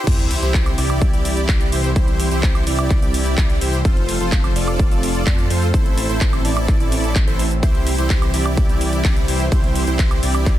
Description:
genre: EDM, festival progressive house.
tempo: 127 BPM.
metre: 4/4.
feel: straight.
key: C major.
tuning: A4 = 439 Hz.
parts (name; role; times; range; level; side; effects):
dense compressed supersaw; riff; 0.0-10.6 s; E4 to D5; -23 LUFS; right 1 dB; sidechain pumping, tape echo.
noise sweep and sub drop; sound effects; 0.2-2.0 s; none; -30 LUFS; equal; none.
lush unison pad; sustained chords; 0.1-10.6 s; E3 to C4; -27 LUFS; right 1 dB; chorus, sidechain pumping.
wide detuned saw bass; bass; 0.1-10.6 s; F1 to F2; -21 LUFS; equal; chorus, sidechain pumping.
big-room dance drum kit; drums; 0.1-10.6 s; crash cymbal, handclaps, hi-hat, ride cymbal, shaker, woodblock; -26 LUFS; equal; none.
electronic kick drum; drums; 0.1-10.6 s; none; -17 LUFS; equal; none.
room: digital ambience.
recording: dense, heavily limited modern master, high-pass filter.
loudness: -15 LUFS.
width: side -13 dB against mid.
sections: 0.1-10.6 A section.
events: drop 0.1-10.6; impact 0.1-2.0.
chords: 0.1 C; 3.9 F; 5.7 Am; 7.6 C.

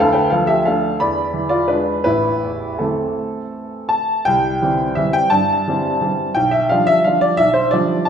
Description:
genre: classical, piano waltz.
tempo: 158-188 BPM.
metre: 3/4.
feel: rubato.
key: A minor, C major from 4.3 s.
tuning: A4 = 439 Hz.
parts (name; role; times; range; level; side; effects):
clear upright piano; solo; 0.0-8.1 s; A1 to B5; -15 LUFS; equal; none.
room: wet recital hall reverb, RT60 1.5 s.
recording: heard from further back in the room.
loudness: -15 LUFS.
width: side -8 dB against mid.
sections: 0.0-4.3 A section; 4.3-8.1 B section.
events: none.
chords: 0.0 Bm7b5/D; 1.0 E7; 2.1 Am; 4.3 C; 6.4 G7/B.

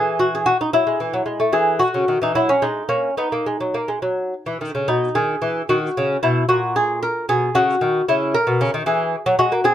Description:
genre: classical, baroque-style dance for lute.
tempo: 75 BPM (dotted quarters).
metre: 6/8.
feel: rubato.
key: B major.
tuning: A4 = 439 Hz.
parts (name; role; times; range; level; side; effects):
lute; solo; 0.0-9.7 s; A#2 to A#4; -17 LUFS; equal; none.
room: light reverb.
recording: none.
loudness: -17 LUFS.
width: side -11 dB against mid.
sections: 0.0-4.9 A section; 4.9-9.7 B section.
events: none.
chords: 0.0 E; 1.5 C#m/E; 2.3 F#; 3.2 B (rootless); 4.9 B; 6.5 N.C.; 7.3 B; 8.1 C#m.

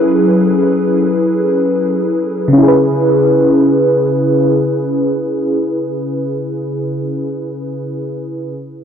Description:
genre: R&B.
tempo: free time.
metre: none.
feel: none.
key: C# minor.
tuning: A4 = 440 Hz.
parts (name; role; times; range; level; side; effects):
FM electric piano with soft pad layer; solo; 0.0-8.5 s; C#3 to B4; -12 LUFS; equal; chorus, low-pass filter, tape echo.
room: light reverb, digital ambience.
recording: dry, gritty hardware recording.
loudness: -12 LUFS.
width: side -8 dB against mid.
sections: 0.0-2.6 A section; 2.6-6.0 B section.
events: filter sweep on FM electric piano 0.0-2.6.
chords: 0.0 F#m7; 2.6 C#m7.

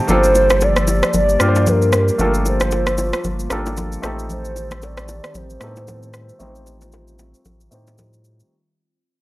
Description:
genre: amapiano.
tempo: 114 BPM.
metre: 4/4.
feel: swing 58% on 16ths.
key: unclear.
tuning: A4 = 440 Hz.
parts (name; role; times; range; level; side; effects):
bright grand piano; accompaniment; 0.0-8.5 s; A3 to G5; -23 LUFS; equal; low-pass filter.
hollow soft pad; sustained chords; 0.0-8.5 s; Eb3 to G4; -28 LUFS; left 1 dB; chorus, low-pass filter.
hollow clarinet-like synth lead; melody; 0.1-8.0 s; Bb4 to D5; -19 LUFS; equal; chorus, low-pass filter, analog delay.
saturated sub bass; bass; 0.1-8.4 s; G1 to A2; -21 LUFS; equal; none.
electronic shaker and rim click; drums; 0.1-8.5 s; none; -22 LUFS; equal; overdrive.
congas and bongos; percussion; 0.1-8.1 s; none; -26 LUFS; left 1 dB; none.
room: light reverb, digital ambience.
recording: dry, gritty hardware recording.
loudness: -14 LUFS.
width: side -18 dB against mid.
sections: 0.0-8.5 A section.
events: fade-out 0.0-8.5; filter sweep 0.0-8.5; break 0.1-0.6, 7.5-8.5.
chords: 0.1 Gm9; 4.0 Am7b5.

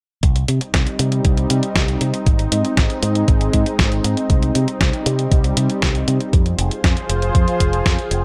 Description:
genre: italo disco.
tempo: 118 BPM.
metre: 4/4.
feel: straight.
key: C minor.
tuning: A4 = 442 Hz.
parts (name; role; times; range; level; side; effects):
lush unison pad; sustained chords; 0.7-8.2 s; F3 to C5; -24 LUFS; equal; chorus.
fingered electric bass with an envelope filter; bass; 0.2-8.2 s; F1 to C3; -22 LUFS; equal; tube saturation.
clean 12-bit digital drum machine; drums; 0.2-8.2 s; hi-hat, snare drum; -24 LUFS; equal; none.
electronic kick drum; drums; 0.2-8.0 s; none; -19 LUFS; equal; none.
room: little or no reverb.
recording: none.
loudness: -18 LUFS.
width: mono.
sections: 0.2-8.2 A section.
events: none.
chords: 0.2 Cm; 2.3 Ab; 4.3 Cm; 6.3 Fm.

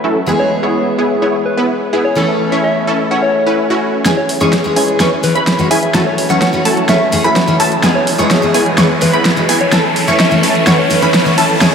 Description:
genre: EDM, festival progressive house.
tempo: 127 BPM.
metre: 4/4.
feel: straight.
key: unclear.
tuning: A4 = 440 Hz.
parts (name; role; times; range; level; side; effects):
picked steel-string acoustic guitar; accompaniment; 0.0-11.7 s; E3 to C#5; -17 LUFS; left 1 dB; lush chorus.
supersaw stab; riff; 0.0-11.7 s; F#3 to C#5; -16 LUFS; right 1 dB; analog chorus, low-pass filter, analog delay.
soft struck synth lead; melody; 0.4-11.3 s; G#4 to F#5; -18 LUFS; equal; chorus, analog delay.
wide unison pluck; arpeggios; 4.1-11.7 s; G#5 to C#6; -18 LUFS; equal; lush chorus, analog delay.
big-room dance drum kit; drums; 4.1-11.7 s; hi-hat, snare drum; -15 LUFS; equal; overdrive.
riser; sound effects; 7.5-11.7 s; none; -22 LUFS; equal; none.
room: wet cathedral reverb, RT60 5.3 s.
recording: dreamy mix soaked in reverb.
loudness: -10 LUFS.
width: side -6 dB against mid.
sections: 0.0-4.1 A section; 4.1-11.7 B section.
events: filter sweep on supersaw synth 0.0-4.1, 4.1-11.7; build-up 4.1-11.7; drum fill 4.1-11.7; riser 7.5-11.7.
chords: 0.3 E; 2.2 A; 4.1 C#m; 5.9 F#m7; 7.8 E; 9.7 A.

